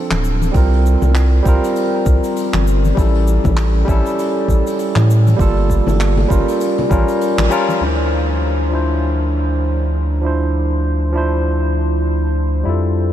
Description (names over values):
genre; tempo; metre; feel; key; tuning
sunset chillout; 99 BPM; 4/4; swing 57% on 16ths; D minor; A4 = 440 Hz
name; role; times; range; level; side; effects
barky tine electric piano; accompaniment; 0.0-13.1 s; F3 to C5; -18 LUFS; moving between left 4 dB and right 5 dB; overdrive, auto-pan, low-pass filter, diffuse ambient delay
round analog bass; bass; 0.1-13.1 s; D1 to A2; -15 LUFS; equal; none
vintage brush drum kit; drums; 0.1-7.8 s; handclaps, hi-hat, shaker; -28 LUFS; equal; none
congas; percussion; 0.1-7.8 s; none; -27 LUFS; left 4 dB; none
electronic kick drum; drums; 0.5-7.0 s; none; -17 LUFS; equal; none
room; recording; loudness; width
light reverb, small room ambience; none; -13 LUFS; side -11 dB against mid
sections
0.0-7.8 A section; 7.8-13.1 B section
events
band accent 7.4-7.7; filter sweep on tine electric piano 7.8-13.1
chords
0.0 Dm7; 0.5 C7sus4; 3.0 A7; 5.4 Gm9; 6.6 A7b9b13; 7.8 Dm9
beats
| 0.54 1.15 1.76 2.36 | 2.97 3.57 4.18 4.79 | 5.39 6.00 6.60 7.21 | 7.82 8.42 9.03 9.63 | 10.24 10.85 11.45 12.06 | 12.66